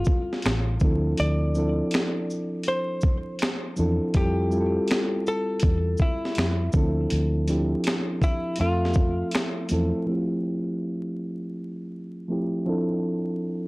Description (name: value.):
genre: lo-fi hip hop.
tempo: 81 BPM.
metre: 4/4.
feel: swing 63% on 16ths.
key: F major.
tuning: A4 = 445 Hz.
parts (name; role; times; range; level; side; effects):
hollow-body jazz guitar; melody; 0.0-9.7 s; E4 to D5; -30 LUFS; left 1 dB; none.
reed electric piano; accompaniment; 0.0-13.7 s; F3 to E5; -27 LUFS; equal; cassette tape, low-pass filter.
boom bap sampler-style drum kit; drums; 0.0-9.9 s; finger snaps, hi-hat, kick drum, shaker, snare drum; -24 LUFS; equal; vintage 12-bit sampler grit.
vintage muted fingered electric bass; bass; 0.5-9.9 s; A1 to F2; -25 LUFS; equal; tube saturation.
room: digital ambience.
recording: dry, gritty hardware recording, vinyl crackle.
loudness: -22 LUFS.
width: side -23 dB against mid.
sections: 0.0-10.1 A section; 10.1-13.7 B section.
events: filter sweep on reed electric piano 10.1-13.7.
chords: 0.0 Fmaj9; 0.8 Dm9; 4.1 Fmaj9; 6.7 Dm9; 8.6 Fmaj7; 10.1 Fmaj9; 12.7 Dm9.